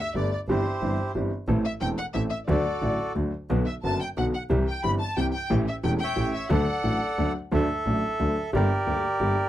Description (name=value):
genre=tango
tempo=180 BPM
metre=3/4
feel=rubato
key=unclear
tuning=A4 = 439 Hz
part: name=bandoneon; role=melody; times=0.0-9.5 s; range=E4 to B5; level=-29 LUFS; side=right 1 dB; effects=none
part: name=rich studio violin section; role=second line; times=0.0-7.3 s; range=C5 to B5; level=-33 LUFS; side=left 3 dB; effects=none
part: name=clear upright piano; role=accompaniment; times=0.1-9.3 s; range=E1 to A4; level=-27 LUFS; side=left 1 dB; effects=none
part: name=clear double bass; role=bass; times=0.2-9.3 s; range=E1 to D2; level=-28 LUFS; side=right 1 dB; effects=none
room=little or no reverb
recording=dry, close 1970s-style studio recording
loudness=-23 LUFS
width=side -13 dB against mid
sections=0.0-7.5 A section; 7.5-9.5 B section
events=none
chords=0.5 C/G; 1.5 Am; 2.5 D; 3.5 Bm; 4.5 C; 5.5 A7; 6.5 D; 8.5 Gm